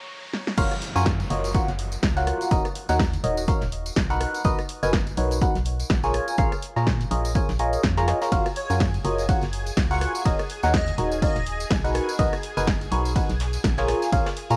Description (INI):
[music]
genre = piano house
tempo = 124 BPM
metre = 4/4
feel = swing 57% on 16ths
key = F# major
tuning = A4 = 440 Hz
[part]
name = analog string pad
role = sustained chords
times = 0.0-0.6, 8.3-14.6 s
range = G#4 to A#5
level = -40 LUFS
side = equal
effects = ensemble chorus, sidechain pumping, cassette tape
[part]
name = riser and downlifter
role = sound effects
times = 0.0-4.4 s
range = none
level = -41 LUFS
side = equal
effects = none
[part]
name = punchy analog drum machine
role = drums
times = 0.3-14.6 s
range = crash cymbal, hi-hat, ride cymbal, rim click, snare drum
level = -33 LUFS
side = equal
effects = cassette tape
[part]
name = barking FM electric piano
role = riff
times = 0.6-14.6 s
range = D#4 to A#5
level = -28 LUFS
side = equal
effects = phaser, sidechain pumping, cassette tape, analog delay
[part]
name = organ-like FM bass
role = bass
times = 0.6-14.6 s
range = D#1 to A#2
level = -29 LUFS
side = equal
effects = sidechain pumping
[part]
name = electronic kick drum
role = drums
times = 0.6-14.2 s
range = none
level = -27 LUFS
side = equal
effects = cassette tape
[part]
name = jazz brush drum kit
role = drums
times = 0.6-14.6 s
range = hi-hat, snare drum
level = -43 LUFS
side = equal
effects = none
[part]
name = tambourine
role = percussion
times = 0.6-14.6 s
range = none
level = -42 LUFS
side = equal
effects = none
[part]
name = airy dreamy lead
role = melody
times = 8.6-11.6 s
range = C#5 to F#5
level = -35 LUFS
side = equal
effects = chorus, analog delay
[sound]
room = light reverb, studio reverb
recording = home recording on cassette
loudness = -24 LUFS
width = mono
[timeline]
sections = 0.6-14.6 A section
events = break 0.0-0.6; riser 0.0-0.6; drum fill 0.3; drop 0.6-14.6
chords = 0.0 A#m; 0.6 F#maj7; 2.5 D#m7; 4.2 Bmaj7; 6.1 A#m7; 8.3 F#maj7; 10.3 D#m7; 11.9 Bmaj7; 13.9 A#m7